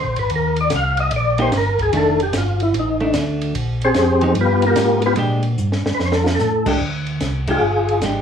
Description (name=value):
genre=soul jazz organ trio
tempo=148 BPM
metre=4/4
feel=swing 66% on 8ths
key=Bb mixolydian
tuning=A4 = 443 Hz
part: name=percussive tonewheel organ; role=melody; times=0.0-8.0 s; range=A#3 to F5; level=-18 LUFS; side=left 1 dB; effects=chorus vibrato, fast rotary speaker
part: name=mellow tonewheel organ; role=bass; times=0.0-8.2 s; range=F1 to Bb2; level=-21 LUFS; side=equal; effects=overdrive, chorus vibrato, slow rotary speaker
part: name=compact cocktail drum kit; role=drums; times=0.2-8.1 s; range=crash cymbal, hi-hat, kick drum, ride cymbal, snare drum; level=-25 LUFS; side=right 1 dB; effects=none
part: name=hollow-body jazz guitar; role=accompaniment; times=1.4-8.2 s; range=Eb3 to G4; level=-21 LUFS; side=right 1 dB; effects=none
room=moderate studio reverb, RT60 0.6 s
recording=worn, warbling old tape, cassette tape, warbly pitch drift, small room reverb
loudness=-16 LUFS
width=side -8 dB against mid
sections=0.0-6.8 A section; 6.8-8.2 B section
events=tonewheel organ solo 0.0-6.8; drum fill 5.6-6.4; band accent 7.4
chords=0.3 Cm7; 1.9 F13; 3.6 Bbsus2; 4.4 G7#9; 5.2 Bb6; 6.0 F69; 6.8 Bb13 (rootless)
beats=| 0.31 0.71 1.12 1.52 | 1.93 2.33 2.74 3.15 | 3.55 3.96 4.37 4.77 | 5.18 5.58 5.99 6.40 | 6.80 7.21 7.62 8.03